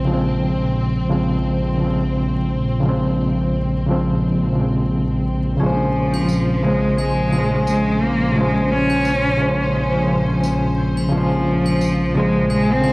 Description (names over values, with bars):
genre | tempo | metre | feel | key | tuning
trip hop | 87 BPM | 4/4 | swing 56% on 16ths | Bb minor | A4 = 440 Hz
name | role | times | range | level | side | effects
overdriven reed electric piano | accompaniment | 0.0-12.9 s | Db3 to C5 | -19 LUFS | equal | tremolo, low-pass filter, cassette tape, tape echo
rich studio violin section | sustained chords | 0.0-12.9 s | C4 to C5 | -31 LUFS | equal | cassette tape
dark detuned saw bass | bass | 0.0-12.9 s | Bb1 | -22 LUFS | equal | none
clear cello | melody | 5.6-12.9 s | F3 to Db4 | -21 LUFS | equal | cassette tape, tape echo
concert harp | arpeggios | 5.6-12.9 s | Ab3 to C5 | -25 LUFS | left 2 dB | cassette tape, tape echo
triangle and tambourine | percussion | 6.1-12.9 s | none | -37 LUFS | right 2 dB | none
room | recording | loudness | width
little or no reverb | home recording on cassette, vinyl crackle | -16 LUFS | side -24 dB against mid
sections
0.0-12.9 A section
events
filter sweep on reed electric piano 0.0-12.9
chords
0.0 Bbm9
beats
| 0.08 0.77 1.46 2.15 | 2.84 3.53 4.22 4.91 | 5.60 6.29 6.98 7.67 | 8.36 9.05 9.74 10.43 | 11.12 11.80 12.49